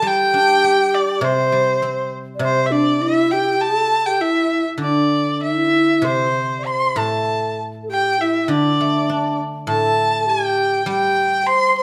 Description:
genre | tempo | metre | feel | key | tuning
chinese traditional, Chinese chamber ensemble | 100 BPM | 4/4 | rubato | G zhi mode | A4 = 440 Hz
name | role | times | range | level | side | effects
clear erhu | melody | 0.0-11.8 s | C5 to C6 | -21 LUFS | equal | none
breathy low xiao | second line | 0.0-11.8 s | D4 to D5 | -22 LUFS | equal | none
guzheng | accompaniment | 0.0-11.8 s | A2 to G4 | -28 LUFS | equal | none
room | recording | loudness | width
moderate recital hall reverb, RT60 1.5 s | none | -18 LUFS | mono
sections
0.0-11.8 A section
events
none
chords
none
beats
| 0.04 0.64 1.23 1.83 | 2.43 3.02 3.61 4.20 | 4.80 5.42 6.03 6.66 | 7.28 7.89 8.50 9.09 | 9.68 10.28 10.88 11.47

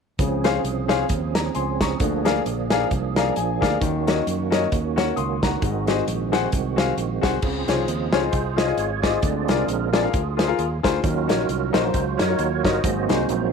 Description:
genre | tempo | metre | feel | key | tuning
uptempo gospel | 133 BPM | 4/4 | swing 57% on 8ths | Db major | A4 = 440 Hz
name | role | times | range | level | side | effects
clear baby grand piano | accompaniment | 0.2-13.5 s | Ab2 to Eb6 | -24 LUFS | left 12 dB | none
tonewheel organ | sustained chords | 0.2-13.5 s | Eb3 to Eb5 | -26 LUFS | right 15 dB | slow rotary speaker, overdrive, chorus vibrato
fingered electric bass | bass | 0.2-13.5 s | G1 to Gb2 | -27 LUFS | right 1 dB | none
natural country drum kit | drums | 0.2-13.4 s | crash cymbal, hi-hat, kick drum, snare drum | -24 LUFS | right 1 dB | none
room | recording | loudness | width
light reverb, small room ambience | 1960s-style stereo with parts hard left and right | -20 LUFS | side -6 dB against mid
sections
0.2-7.4 A section; 7.4-13.5 B section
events
grand piano fill 2.9-3.8; tonewheel organ solo 7.4-13.5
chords
0.2 Dbmaj7; 2.0 Bb7; 3.8 Ebm7; 5.6 Ab7; 7.4 Dbmaj7; 9.2 Bb7; 11.0 Ebm7; 12.8 Ab7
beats
| 0.19 0.64 1.10 1.55 | 2.00 2.45 2.91 3.36 | 3.81 4.26 4.71 5.17 | 5.62 6.07 6.52 6.97 | 7.42 7.88 8.33 8.78 | 9.23 9.68 10.13 10.58 | 11.03 11.48 11.94 12.39 | 12.84 13.29

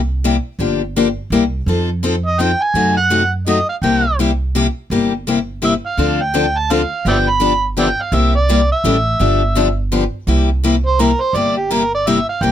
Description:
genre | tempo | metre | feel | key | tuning
acoustic string swing (jazz manouche) | 167 BPM | 3/4 | swing 62% on 8ths | C mixolydian | A4 = 440 Hz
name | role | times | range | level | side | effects
upright bass | bass | 0.0-12.5 s | G1 to F#2 | -19 LUFS | right 1 dB | none
picked steel-string acoustic guitar | accompaniment | 0.2-12.5 s | C3 to A4 | -16 LUFS | left 4 dB | none
overdriven harmonica | melody | 2.3-12.5 s | G4 to B5 | -17 LUFS | right 2 dB | none
room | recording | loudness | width
little or no reverb | close, detailed microphones | -14 LUFS | side -10 dB against mid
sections
0.0-10.3 A section; 10.3-12.5 B section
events
harmonica solo 10.3-12.5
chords
0.0 C7; 0.6 Gm7; 1.3 C7; 1.7 F7; 2.7 F#dim7; 3.8 C7; 6.0 Dm7; 7.0 G7; 8.1 C7; 8.8 A7; 9.2 G7; 10.3 C7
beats
0.23 | 0.59 0.95 1.31 | 1.67 2.03 2.39 | 2.75 3.10 3.46 | 3.82 4.18 4.54 | 4.90 5.26 5.62 | 5.97 6.33 6.69 | 7.05 7.41 7.76 | 8.12 8.48 8.84 | 9.20 9.55 9.91 | 10.27 10.63 10.98 | 11.34 11.70 12.06 | 12.41

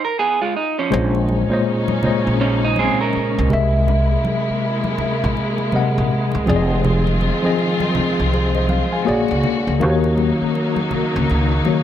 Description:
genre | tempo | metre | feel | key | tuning
R&B, neo-soul | 81 BPM | 4/4 | swing 60% on 16ths | unclear | A4 = 440 Hz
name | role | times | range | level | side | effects
electric guitar through a small old amp | second line | 0.0-3.5 s | F3 to Bb4 | -20 LUFS | right 5 dB | plate reverb
mellow tine electric piano | accompaniment | 0.9-11.8 s | Bb2 to Ab5 | -19 LUFS | left 2 dB | medium stereo tremolo, plate reverb
warm studio string section | sustained chords | 0.9-11.8 s | C3 to F#4 | -24 LUFS | equal | plate reverb
upright bass | bass | 0.9-11.7 s | F1 to Eb2 | -20 LUFS | right 1 dB | none
congas | percussion | 0.9-11.8 s | none | -27 LUFS | right 3 dB | none
room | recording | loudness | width
moderate studio reverb, RT60 0.5 s | none | -16 LUFS | side -10 dB against mid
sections
0.9-11.8 A section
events
stop 0.0-0.9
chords
0.2 N.C.; 0.9 Bbm11; 3.5 C7alt; 6.5 Fm7; 9.1 Bb7alt; 9.8 Ebm7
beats
0.17 | 0.91 1.65 2.39 3.13 | 3.88 4.62 5.36 6.10 | 6.84 7.58 8.32 9.06 | 9.80 10.54 11.28

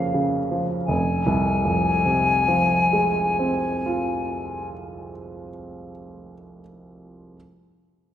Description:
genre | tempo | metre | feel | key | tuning
classical, romantic duo for flute and grand piano | 42 BPM | 3/4 | rubato | F minor | A4 = 440 Hz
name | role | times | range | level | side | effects
silver concert flute | melody | 0.0-4.7 s | F5 to Ab5 | -23 LUFS | left 4 dB | none
dark grand piano | accompaniment | 0.0-7.4 s | F1 to Bb4 | -24 LUFS | right 2 dB | none
room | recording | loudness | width
wet concert hall reverb, RT60 2.0 s | none | -19 LUFS | side -10 dB against mid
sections
0.9-5.1 A section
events
none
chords
0.0 Bbm/F; 0.9 Fm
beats
| 0.90 2.29 3.71

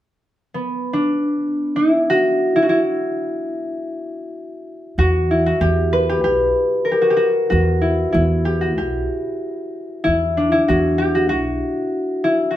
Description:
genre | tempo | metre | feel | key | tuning
turkish | 95 BPM | 4/4 | straight | E makam nikriz | A4 = 440 Hz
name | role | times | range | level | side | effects
concert harp | melody | 0.5-12.6 s | B3 to B4 | -17 LUFS | equal | none
upright bass | bass | 5.0-11.6 s | B1 to E2 | -20 LUFS | right 1 dB | none
room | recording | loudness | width
wet studio reverb, RT60 0.6 s | band playing live in one room | -16 LUFS | side -12 dB against mid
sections
0.0-5.0 A section; 5.0-12.6 B section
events
none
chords
none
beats
0.55 1.18 1.81 | 2.45 3.08 3.71 4.35 | 4.98 5.62 6.25 6.88 | 7.52 8.15 8.78 9.42 | 10.05 10.69 11.32 11.95

